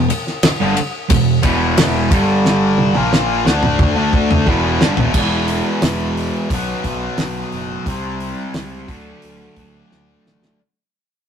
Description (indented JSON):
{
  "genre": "classic rock",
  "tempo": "89 BPM",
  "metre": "4/4",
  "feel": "straight",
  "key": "unclear",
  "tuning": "A4 = 440 Hz",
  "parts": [
    { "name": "overdriven electric guitar", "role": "riff", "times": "0.0-10.6 s", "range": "E2 to E4", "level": "-20 LUFS", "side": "right 4 dB", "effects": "phaser" },
    { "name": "tight distorted guitar", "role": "riff", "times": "0.0-10.6 s", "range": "E2 to D4", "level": "-20 LUFS", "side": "left 5 dB", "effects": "distortion" },
    { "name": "growling picked electric bass", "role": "bass", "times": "0.0-10.5 s", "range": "E1 to D2", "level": "-25 LUFS", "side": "equal", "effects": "overdrive" },
    { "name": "damped 70s drum kit", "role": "drums", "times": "0.1-10.6 s", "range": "crash cymbal, hi-hat, kick drum, ride cymbal, snare drum, toms", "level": "-17 LUFS", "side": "equal", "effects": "none" }
  ],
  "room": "moderate small room reverb, RT60 0.6 s",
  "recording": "rough rehearsal-room recording, warm saturation",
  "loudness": "-14 LUFS",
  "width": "side -8 dB against mid",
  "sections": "0.0-5.2 A section; 5.2-10.6 B section",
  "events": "drum fill 2.5-5.2, 9.9-10.6; fade-out 5.2-10.6",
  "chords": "0.0 E5; 2.1 G5; 3.0 E5; 5.2 E; 6.5 Bsus2; 7.9 C; 8.9 D"
}